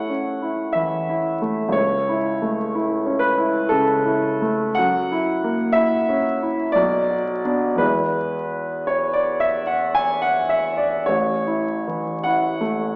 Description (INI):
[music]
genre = classical, romantic nocturne for solo piano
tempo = 48-64 BPM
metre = 3/4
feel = rubato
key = A major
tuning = A4 = 436 Hz
[part]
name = clear concert grand piano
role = solo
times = 0.0-13.0 s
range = A1 to G#5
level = -21 LUFS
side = equal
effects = none
[sound]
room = wet recital hall reverb, RT60 1.3 s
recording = heard from further back in the room, vinyl crackle, small speaker sound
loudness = -21 LUFS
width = mono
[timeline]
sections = 0.0-13.0 A section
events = none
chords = 0.0 A; 1.8 A/C#; 4.8 F#7; 6.8 Bm; 7.8 E; 11.1 A